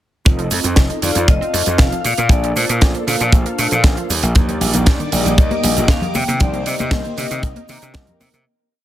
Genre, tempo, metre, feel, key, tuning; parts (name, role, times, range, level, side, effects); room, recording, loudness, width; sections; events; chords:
nu-disco, nu disco; 117 BPM; 4/4; straight; F mixolydian; A4 = 440 Hz
mellow synth brass; accompaniment; 0.2-8.4 s; Bb3 to F5; -25 LUFS; right 1 dB; chorus
wide unison pluck; arpeggios; 0.3-8.4 s; D3 to D4; -28 LUFS; right 3 dB; sidechain pumping, tape echo
gritty slap bass; bass; 0.3-8.4 s; F1 to C3; -20 LUFS; equal; overdrive, tube saturation, sidechain pumping
kick drum; drums; 0.3-8.1 s; -13 LUFS; equal
tight funk drum kit; drums; 0.3-8.4 s; hi-hat, shaker, snare drum; -21 LUFS; right 3 dB
vibraphone with medium hard mallets; melody; 1.0-8.2 s; C5 to G5; -24 LUFS; left 4 dB; tape echo
string machine, full ensemble; sustained chords; 4.4-8.4 s; Eb3 to D6; -29 LUFS; equal; ensemble chorus, sidechain pumping
congas; percussion; 4.4-8.3 s; -26 LUFS; left 3 dB
studio ambience; -14 LUFS; side -13 dB against mid
0.3-8.5 drop
drop 0.3-8.5; fade-out 5.7-8.5
0.3 F7; 2.0 Bbmaj7; 4.1 Ebmaj7; 6.1 Cm9